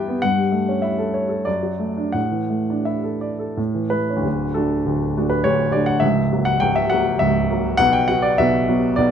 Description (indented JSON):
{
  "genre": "classical, romantic character piece for solo piano",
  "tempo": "82-104 BPM",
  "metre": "3/4",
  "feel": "rubato",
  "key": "D major",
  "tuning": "A4 = 440 Hz",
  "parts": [
    { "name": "warm grand piano", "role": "solo", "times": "0.0-9.1 s", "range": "C#1 to B5", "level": "-17 LUFS", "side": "equal", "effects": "none" }
  ],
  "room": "moderate studio reverb, RT60 0.6 s",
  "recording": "minimal, uncompressed stereo recording",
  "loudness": "-17 LUFS",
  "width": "side -8 dB against mid",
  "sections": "0.0-4.3 A section; 4.3-9.1 B section",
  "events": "none",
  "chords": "0.2 A7/G; 1.5 D/F#; 2.2 Asus4; 3.6 A; 4.3 D; 6.0 F#/C#; 7.8 Bm"
}